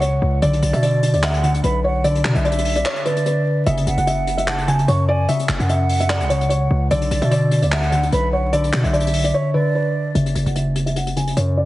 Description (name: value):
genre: hip hop, trap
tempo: 148 BPM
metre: 4/4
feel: half-time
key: unclear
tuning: A4 = 439 Hz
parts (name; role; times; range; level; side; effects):
- felt-muted upright piano; melody; 0.0-11.7 s; B4 to G#5; -22 LUFS; left 1 dB; low-pass filter, ping-pong delay
- mellow hollow silver concert flute; second line; 0.0-10.1 s; D5 to C#6; -26 LUFS; right 3 dB; ping-pong delay
- glassy digital keys; accompaniment; 0.0-11.7 s; C#3 to D3; -21 LUFS; equal; chorus, low-pass filter
- hard-hitting 808-style bass; bass; 0.0-11.7 s; F#1 to B2; -21 LUFS; equal; none
- vintage brush drum kit; drums; 0.0-11.5 s; handclaps, hi-hat; -26 LUFS; left 1 dB; none
room: light reverb, studio reverb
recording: heavily compressed radio sound, multiband compression, vinyl crackle, nothing above 10.8 kHz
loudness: -16 LUFS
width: side -16 dB against mid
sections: 0.0-10.2 A section; 10.2-11.7 B section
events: kick muted 2.9-3.7; drums muted 9.3-10.2; filter sweep 10.2-11.7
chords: 0.4 Bm; 3.7 F#5; 6.9 Bm; 10.2 F#5